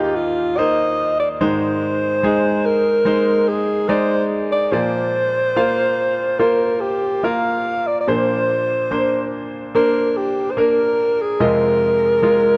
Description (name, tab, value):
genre	pop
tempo	72 BPM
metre	4/4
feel	straight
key	unclear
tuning	A4 = 440 Hz
part	dark alto saxophone	melody	0.0-12.6 s	F4 to F5	-20 LUFS	equal	none
part	clear concert grand piano	accompaniment	0.0-12.6 s	Eb2 to G5	-22 LUFS	equal	none
room	moderate lush hall reverb, RT60 2.5 s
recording	dark, warm production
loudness	-18 LUFS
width	mono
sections	0.0-12.6 A section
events	none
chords	0.0 Cm7/Eb; 1.4 Ab; 4.7 Bbadd9; 11.4 Fm7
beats	0.59 | 1.41 2.24 3.06 3.89 | 4.72 5.55 6.38 7.23 | 8.06 8.90 9.74 10.57 | 11.40 12.23